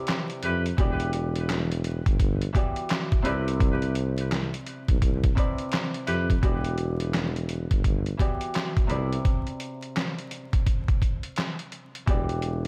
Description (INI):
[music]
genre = hip hop, boom-bap hip-hop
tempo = 85 BPM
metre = 4/4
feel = swing 63% on 16ths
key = E minor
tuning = A4 = 442 Hz
[part]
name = Celtic harp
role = accompaniment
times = 0.0-12.7 s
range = C3 to D5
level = -36 LUFS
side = equal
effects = high-pass filter, low-pass filter
[part]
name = trip hop sampler-style drum kit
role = drums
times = 0.1-12.7 s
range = handclaps, hi-hat, kick drum, snare drum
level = -28 LUFS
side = equal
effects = none
[part]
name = clear horn section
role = stabs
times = 0.4-6.3 s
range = E4 to B4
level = -36 LUFS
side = equal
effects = high-pass filter, low-pass filter, delay
[part]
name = mellow tuba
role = bass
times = 0.4-12.7 s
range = E1 to F2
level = -30 LUFS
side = equal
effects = none
[sound]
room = studio ambience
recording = dark, warm production, vinyl crackle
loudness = -26 LUFS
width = mono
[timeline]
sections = 0.0-6.4 A section; 6.4-12.7 B section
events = none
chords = 0.0 Cmaj7; 0.8 Em7; 3.3 Cmaj7; 6.4 Em7; 8.9 N.C.; 12.1 Em7